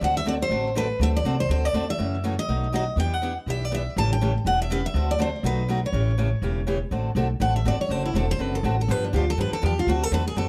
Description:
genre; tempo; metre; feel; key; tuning
acoustic string swing (jazz manouche); 243 BPM; 4/4; swing 55% on 8ths; D mixolydian; A4 = 444 Hz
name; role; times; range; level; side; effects
picked steel-string acoustic guitar; melody; 0.0-10.5 s; D4 to A5; -29 LUFS; equal; tape echo
picked steel-string acoustic guitar; accompaniment; 0.0-10.5 s; B2 to A4; -31 LUFS; equal; none
upright bass; bass; 0.0-10.5 s; E1 to G2; -27 LUFS; equal; none
room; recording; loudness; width
moderate small room ambience, RT60 0.5 s; lossy compression artefacts; -24 LUFS; mono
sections
0.0-6.9 A section; 6.9-10.5 B section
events
steel-string acoustic guitar solo 6.9-10.5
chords
0.0 D7; 2.0 F#m7; 2.5 B7; 3.0 Em7; 4.0 A7; 4.9 D7; 5.4 B7; 5.9 A7; 6.9 D7; 8.9 G7; 9.9 D7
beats
| 0.02 0.26 0.51 0.76 | 1.00 1.25 1.50 1.74 | 1.99 2.23 2.48 2.73 | 2.98 3.22 3.47 3.71 | 3.96 4.21 4.45 4.70 | 4.95 5.19 5.44 5.69 | 5.93 6.18 6.43 6.67 | 6.92 7.17 7.41 7.66 | 7.91 8.15 8.40 8.65 | 8.89 9.14 9.38 9.63 | 9.88 10.12 10.37

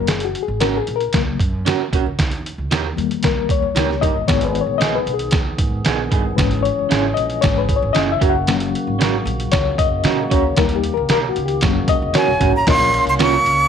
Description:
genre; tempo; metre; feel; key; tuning
uptempo 1960s-style soul; 114 BPM; 4/4; straight; unclear; A4 = 445 Hz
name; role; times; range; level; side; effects
reed electric piano; accompaniment; 0.0-13.4 s; C#3 to F#5; -20 LUFS; left 11 dB; overdrive, fast tremolo
upright bass; bass; 0.0-13.7 s; E1 to A#2; -24 LUFS; right 1 dB; none
trip hop sampler-style drum kit; drums; 0.1-13.6 s; crash cymbal, hi-hat, kick drum, ride cymbal, snare drum; -19 LUFS; right 2 dB; none
electric guitar through a small old amp; stabs; 0.6-13.3 s; B3 to A#4; -22 LUFS; right 14 dB; lush chorus
percussive tonewheel organ; sustained chords; 4.3-13.7 s; C#3 to G#4; -28 LUFS; right 2 dB; slow rotary speaker
breathy bright jazz flute; melody; 12.2-13.7 s; G#5 to Db6; -15 LUFS; right 2 dB; none
room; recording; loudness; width
light reverb; 1960s-style stereo with parts hard left and right; -15 LUFS; side -8 dB against mid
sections
0.0-12.7 A section; 12.7-13.7 B section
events
reed electric piano solo 0.0-12.7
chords
0.0 F#; 2.2 D#; 4.3 G#m; 6.4 C#m; 8.2 F#; 10.6 D#; 11.6 F#; 12.7 Bbm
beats
| 0.09 0.61 1.14 1.66 | 2.19 2.71 3.24 3.76 | 4.29 4.81 5.33 5.86 | 6.38 6.91 7.43 7.96 | 8.48 9.00 9.53 10.05 | 10.58 11.10 11.62 12.15 | 12.67 13.19

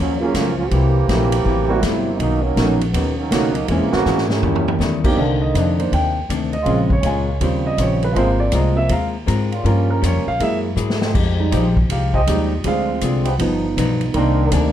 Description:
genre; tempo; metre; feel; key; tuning
jazz, big band swing; 161 BPM; 4/4; swing 64% on 8ths; C minor from 5.2 s; A4 = 440 Hz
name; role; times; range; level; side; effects
warm trombone section; second line; 0.0-5.0 s; C#3 to G4; -21 LUFS; right 4 dB; none
archtop guitar, miked and amplified; accompaniment; 0.0-14.7 s; F#2 to C5; -25 LUFS; left 7 dB; none
upright bass; bass; 0.0-14.7 s; G1 to G#2; -20 LUFS; equal; none
warm concert grand piano; accompaniment; 0.2-14.7 s; Db3 to Ab5; -21 LUFS; right 3 dB; none
swinging big-band drum kit; drums; 0.3-14.6 s; crash cymbal, hi-hat, kick drum, ride cymbal, snare drum, toms; -24 LUFS; equal; none
muted trombone section; sustained chords; 5.2-14.7 s; C3 to Bb4; -27 LUFS; left 1 dB; none
room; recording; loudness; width
light reverb; dark, warm production; -16 LUFS; side -11 dB against mid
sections
0.0-5.2 A section; 5.2-14.7 B section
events
trombone section solo 0.0-5.2; drum fill 4.1-4.8, 10.8-11.1; grand piano solo 5.2-14.7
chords
0.0 F#maj7; 0.7 C7#11; 2.2 Bmaj9; 3.7 A#m7b5; 4.4 D#7b9; 5.2 Cm9; 6.7 Bbm7; 7.4 Eb13; 8.2 Ab69; 9.6 Gm7b5; 10.4 F#9; 11.1 Fm9; 12.6 Dm7b5; 13.4 Gaug7; 14.1 Cm9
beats
0.34 | 0.72 1.09 1.46 1.83 | 2.20 2.57 2.94 3.32 | 3.69 4.06 4.43 4.80 | 5.17 5.55 5.92 6.29 | 6.66 7.04 7.41 7.78 | 8.15 8.53 8.90 9.28 | 9.65 10.02 10.40 10.77 | 11.14 11.52 11.89 12.27 | 12.64 13.02 13.39 13.77 | 14.14 14.52

